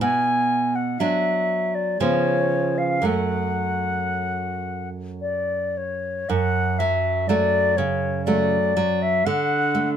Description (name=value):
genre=romantic duo for flute and classical guitar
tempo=54-64 BPM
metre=3/4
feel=rubato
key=F# minor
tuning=A4 = 438 Hz
part: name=concert flute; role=melody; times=0.0-9.9 s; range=C#5 to G#5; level=-23 LUFS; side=left 3 dB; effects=none
part: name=nylon-string guitar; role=accompaniment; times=0.0-10.0 s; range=F#2 to D4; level=-23 LUFS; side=right 3 dB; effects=none
room=moderate studio ambience, RT60 0.4 s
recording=minimal, uncompressed stereo recording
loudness=-20 LUFS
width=side -9 dB against mid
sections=0.0-6.3 A section; 6.3-10.0 B section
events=none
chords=0.0 Bmadd11; 2.0 C#7; 3.1 F#m; 9.3 D